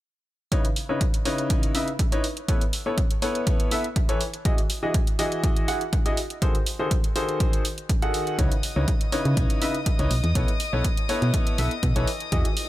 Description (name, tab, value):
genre	piano house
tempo	122 BPM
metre	4/4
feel	straight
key	C# minor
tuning	A4 = 437 Hz
part	warm upright piano	riff	0.5-12.4 s	C#3 to F#5	-27 LUFS	left 1 dB	sidechain pumping, low-pass filter, dub echo
part	electronic hi-hat	drums	0.5-12.7 s	none	-31 LUFS	right 1 dB	studio reverb
part	electronic kick drum	drums	0.5-12.4 s	none	-24 LUFS	equal	studio reverb
part	warm chamber violin section	sustained chords	8.4-12.7 s	D#5 to D#6	-33 LUFS	left 4 dB	sidechain pumping
part	solid FM bass	bass	8.4-12.4 s	B1 to C#3	-23 LUFS	equal	sidechain pumping
part	riser	sound effects	12.5-12.7 s	none	-41 LUFS	right 2 dB	none
room	little or no reverb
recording	none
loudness	-22 LUFS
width	side -15 dB against mid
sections	0.5-12.7 A section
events	riser 12.5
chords	0.5 C#m9; 2.2 B9sus4; 4.2 Emaj9; 6.2 G#7b9/D#; 8.4 C#m9; 10.1 B9sus4; 12.1 Emaj9